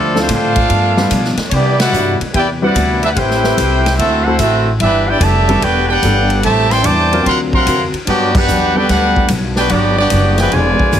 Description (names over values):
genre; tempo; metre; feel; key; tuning
jazz, big band swing; 146 BPM; 4/4; swing 67% on 8ths; G major; A4 = 440 Hz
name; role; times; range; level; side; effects
bright trumpet section; melody; 0.0-11.0 s; B3 to D6; -15 LUFS; right 1 dB; none
warm trombone section; second line; 0.0-11.0 s; B2 to G4; -20 LUFS; equal; none
picked steel-string acoustic guitar; accompaniment; 0.0-11.0 s; G2 to B4; -23 LUFS; left 3 dB; none
upright bass; bass; 0.0-11.0 s; E1 to C3; -17 LUFS; equal; none
warm grand piano; accompaniment; 0.1-10.9 s; F3 to F#5; -19 LUFS; left 1 dB; none
swinging big-band drum kit; drums; 0.2-11.0 s; crash cymbal, hi-hat, kick drum, ride cymbal, snare drum, toms; -20 LUFS; equal; none
room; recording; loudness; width
moderate club reverb, RT60 0.9 s; heavily compressed radio sound; -11 LUFS; side -9 dB against mid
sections
0.0-11.0 A section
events
band accent 1.7, 8.3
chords
0.0 Dm7; 0.7 G7; 1.5 Cmaj9; 3.2 Am9; 4.0 D13; 4.8 G6; 5.6 Em11; 6.4 Am7; 7.3 D7alt; 8.1 Gmaj7